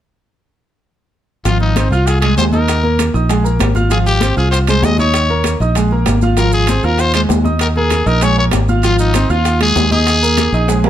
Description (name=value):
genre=latin, salsa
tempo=195 BPM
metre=4/4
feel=straight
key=Ab major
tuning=A4 = 443 Hz
part: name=growling trumpet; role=melody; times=1.5-10.9 s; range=Eb4 to Eb5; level=-17 LUFS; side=left 2 dB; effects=none
part: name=clear concert grand piano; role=accompaniment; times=1.5-10.9 s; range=F3 to F6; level=-18 LUFS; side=right 2 dB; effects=none
part: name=fingered electric bass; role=bass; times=1.5-10.9 s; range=Ab1 to Eb2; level=-14 LUFS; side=equal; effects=none
part: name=bongos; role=percussion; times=1.5-10.9 s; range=none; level=-27 LUFS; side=left 7 dB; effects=none
part: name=congas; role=percussion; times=1.5-10.9 s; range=none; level=-22 LUFS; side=left 3 dB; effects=none
part: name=maracas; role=percussion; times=1.5-10.8 s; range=none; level=-29 LUFS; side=right 8 dB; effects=none
part: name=timbales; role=percussion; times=1.5-10.9 s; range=none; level=-24 LUFS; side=right 5 dB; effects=none
room=light reverb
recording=none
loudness=-11 LUFS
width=side -11 dB against mid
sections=1.5-10.9 A section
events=drum fill 10.7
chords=1.5 Ab6; 2.7 Ebsus4; 3.9 Ab6; 5.1 Eb7sus4; 6.4 Ab6; 7.6 Ebsus4; 8.8 Ab6; 10.1 Ebsus4